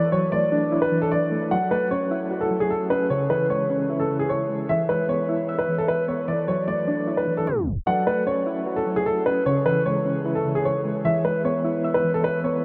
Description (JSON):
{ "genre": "hip hop", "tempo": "151 BPM", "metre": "4/4", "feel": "half-time", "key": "F# minor", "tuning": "A4 = 440 Hz", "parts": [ { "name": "dark baby grand piano", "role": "melody", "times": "0.0-12.6 s", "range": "G#4 to F#5", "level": "-25 LUFS", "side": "equal", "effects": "low-pass filter, diffuse ambient delay" }, { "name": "soft electric-piano-like synth keys", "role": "accompaniment", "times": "0.0-12.6 s", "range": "C#3 to E5", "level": "-27 LUFS", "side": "equal", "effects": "chorus, tremolo, low-pass filter" } ], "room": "wet huge ambient reverb, RT60 6.2 s", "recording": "dreamy mix soaked in reverb, tape stop", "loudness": "-23 LUFS", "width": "mono", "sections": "0.0-1.5 A section; 1.5-7.9 B section; 7.9-12.6 C section", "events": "tape stop 7.5-7.9", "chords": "0.0 Dadd9; 1.5 F#m7; 3.1 C#m; 4.7 E; 6.3 Dadd9; 7.9 F#m7; 9.5 C#m; 11.0 E" }